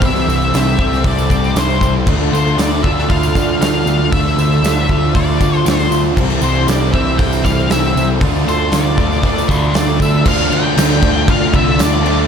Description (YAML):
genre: rock, shoegaze and dream pop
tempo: 117 BPM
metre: 4/4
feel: straight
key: D minor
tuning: A4 = 440 Hz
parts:
  - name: octave-fuzz lead guitar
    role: melody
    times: 0.0-12.2 s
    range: C5 to G5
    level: -20 LUFS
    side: left 4 dB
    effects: distortion, slapback echo
  - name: string machine, violins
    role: sustained chords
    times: 0.0-12.3 s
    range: E3 to A5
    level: -26 LUFS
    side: equal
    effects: ensemble chorus
  - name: picked twelve-string acoustic guitar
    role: arpeggios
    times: 0.0-12.3 s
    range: E3 to G4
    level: -24 LUFS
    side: right 11 dB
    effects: ensemble chorus, slapback echo
  - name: biting overdriven guitar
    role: riff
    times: 0.0-12.3 s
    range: C3 to F4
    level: -21 LUFS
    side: right 1 dB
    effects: none
  - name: overdriven semi-hollow guitar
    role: riff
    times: 0.0-12.3 s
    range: C3 to F4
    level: -22 LUFS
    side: right 10 dB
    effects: reverse reverb
  - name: thick fuzz guitar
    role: riff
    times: 0.0-12.3 s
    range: C3 to D4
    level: -21 LUFS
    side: left 10 dB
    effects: distortion, analog chorus
  - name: growling picked electric bass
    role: bass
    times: 0.0-12.3 s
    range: C2 to D2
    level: -18 LUFS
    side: equal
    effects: overdrive
  - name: big rock drum kit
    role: drums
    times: 0.0-12.2 s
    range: crash cymbal, hi-hat, kick drum, snare drum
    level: -18 LUFS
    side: equal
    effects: none
  - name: tambourine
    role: percussion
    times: 0.0-11.9 s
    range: none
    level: -32 LUFS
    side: right 14 dB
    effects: none
room: small room ambience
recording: none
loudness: -12 LUFS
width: side -7 dB against mid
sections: 0.0-10.3 A section; 10.3-12.3 B section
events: none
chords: 0.0 C6; 2.1 Dm; 6.2 C6; 8.2 Dm